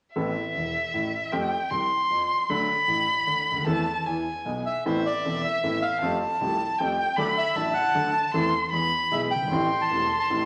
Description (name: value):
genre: tango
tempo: 154 BPM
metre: 3/4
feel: rubato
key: A minor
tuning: A4 = 441 Hz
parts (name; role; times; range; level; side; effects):
- warm violin; second line; 0.2-10.5 s; E5 to C6; -28 LUFS; equal; none
- warm concert grand piano; accompaniment; 0.2-10.5 s; E1 to A4; -31 LUFS; equal; none
- bandoneon; melody; 4.7-10.5 s; C5 to A5; -30 LUFS; equal; none
room: wet large studio reverb, RT60 1.2 s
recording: vinyl crackle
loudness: -25 LUFS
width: mono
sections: 0.2-4.8 A section; 4.8-10.5 B section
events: none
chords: 0.2 Amadd9; 1.3 Fadd9; 2.5 D; 3.7 Am/E; 4.1 E; 4.8 Amadd9; 6.0 Fadd9; 7.2 D; 8.3 Am/E; 8.7 E; 9.5 Am7